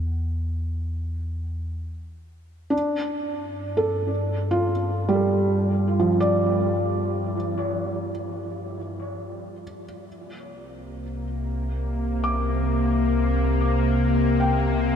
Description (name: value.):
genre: ambient.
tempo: free time.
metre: none.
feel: none.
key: unclear.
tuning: A4 = 440 Hz.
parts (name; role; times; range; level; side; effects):
felt-muted upright piano; arpeggios; 0.0-15.0 s; F3 to D6; -25 LUFS; right 1 dB; tape echo.
deep rumbling drone; bass; 0.0-15.0 s; C2 to G2; -27 LUFS; equal; built-in reverb.
bowed-like drone; drone; 10.9-15.0 s; C3 to Bb3; -24 LUFS; left 2 dB; built-in reverb.
room: wet huge ambient reverb, RT60 7.9 s.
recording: dark, warm production.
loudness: -22 LUFS.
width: side -8 dB against mid.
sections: 0.0-10.1 A section; 10.1-15.0 B section.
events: fade-in on felt piano 10.1-15.0.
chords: 0.0 N.C.; 2.7 Gsus2; 10.1 Csus2.